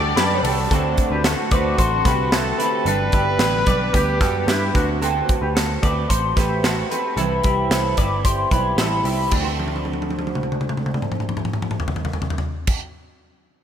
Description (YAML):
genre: jangly indie pop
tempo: 111 BPM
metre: 4/4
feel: straight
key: D mixolydian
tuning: A4 = 440 Hz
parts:
  - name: fingerpicked steel-string acoustic guitar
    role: accompaniment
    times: 0.0-12.9 s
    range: C3 to C5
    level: -26 LUFS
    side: right 5 dB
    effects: analog chorus
  - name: string machine, full ensemble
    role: sustained chords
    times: 0.0-5.0 s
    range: D3 to G4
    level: -30 LUFS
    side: equal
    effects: ensemble chorus
  - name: electric guitar with an envelope filter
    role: arpeggios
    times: 0.0-12.7 s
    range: D4 to D5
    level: -24 LUFS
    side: left 2 dB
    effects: analog chorus, tape echo
  - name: vintage muted picked electric bass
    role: bass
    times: 0.0-12.7 s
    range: G1 to G2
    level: -24 LUFS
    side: equal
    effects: none
  - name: modern studio drum kit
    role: drums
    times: 0.2-12.8 s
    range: crash cymbal, hi-hat, kick drum, ride cymbal, snare drum, toms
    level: -22 LUFS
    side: equal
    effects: none
  - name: warm trumpet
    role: second line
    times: 0.7-5.0 s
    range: D4 to B4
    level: -27 LUFS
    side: left 1 dB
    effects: none
room: wet lush hall reverb, RT60 2.6 s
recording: dreamy mix soaked in reverb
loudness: -18 LUFS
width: side -9 dB against mid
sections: 0.7-9.3 A section; 9.3-13.6 B section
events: drum fill 9.6-12.7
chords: 0.0 Dsus4; 0.7 D7; 2.9 G; 4.7 D7; 7.2 C; 9.3 D7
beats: 0.17 | 0.70 1.24 1.78 2.32 | 2.86 3.40 3.94 4.48 | 5.02 5.55 6.09 6.63 | 7.17 7.71 8.25 8.79 | 9.33 9.87 10.40 10.94 | 11.48 12.02 12.56